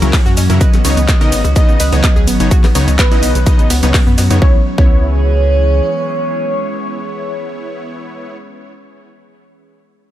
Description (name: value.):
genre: progressive house.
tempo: 126 BPM.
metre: 4/4.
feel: straight.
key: C# minor.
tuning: A4 = 439 Hz.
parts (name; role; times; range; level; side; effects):
evolving wavetable pad; sustained chords; 0.0-8.0 s; D#3 to G#4; -22 LUFS; equal; phaser, built-in reverb, sidechain pumping.
analog pluck; arpeggios; 0.0-8.4 s; B3 to B4; -23 LUFS; left 2 dB; chorus, sidechain pumping, digital delay.
supersaw stab; stabs; 0.0-8.4 s; C#3 to D#5; -22 LUFS; left 2 dB; cassette tape, sidechain pumping, digital delay.
round analog bass; bass; 0.0-5.8 s; G#1 to F#2; -14 LUFS; equal; sidechain pumping.
big-room dance drum kit; drums; 0.0-4.4 s; cabasa, handclaps, hi-hat, ride cymbal; -20 LUFS; equal; overdrive, sidechain pumping on hats, sidechain pumping on perc, sidechain pumping on cymbals.
congas, cowbell and bongos; percussion; 0.0-4.3 s; none; -25 LUFS; left 4 dB; sidechain pumping on perc.
backwards swelling texture; texture; 0.0-4.4 s; C#4 to C#5; -37 LUFS; right 1 dB; none.
breakbeat sampler-style drum kit; drums; 0.1-4.4 s; hi-hat, shaker, snare drum; -27 LUFS; right 1 dB; none.
electronic kick drum; drums; 0.1-4.9 s; none; -10 LUFS; equal; overdrive.
expressive synth lead; melody; 0.6-8.4 s; B4 to D#5; -22 LUFS; right 2 dB; lush chorus, sidechain pumping, digital delay.
soft synth bell; second line; 0.6-8.4 s; B4 to D#5; -30 LUFS; equal; none.
room: little or no reverb.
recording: none.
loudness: -10 LUFS.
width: side -13 dB against mid.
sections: 0.0-4.4 A section; 4.4-8.2 B section.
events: drop 0.0-4.4.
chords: 0.0 F#7; 0.6 Badd9; 4.4 C#m7.